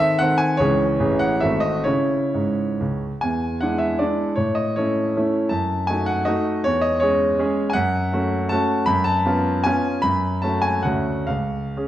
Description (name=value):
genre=classical, romantic triple-time dance for piano with dotted rhythms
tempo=123-171 BPM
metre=3/4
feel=rubato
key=C# minor, F# minor from 7.8 s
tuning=A4 = 440 Hz
part: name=clear grand piano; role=solo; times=0.0-11.9 s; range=G#1 to B5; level=-18 LUFS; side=equal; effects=none
room=wet recital hall reverb, RT60 1.4 s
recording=dark, warm production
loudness=-18 LUFS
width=side -12 dB against mid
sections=0.0-3.2 A section; 3.2-11.9 B section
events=none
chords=0.0 G#; 0.6 C#m; 1.0 Amaj7; 1.4 G#7b9; 1.9 C#m; 3.2 E7; 4.4 A; 5.5 D#dim/F#; 6.6 C#m/E; 7.8 F#m; 8.9 C#7/F#; 10.0 F#m; 10.8 Dmaj7; 11.3 C#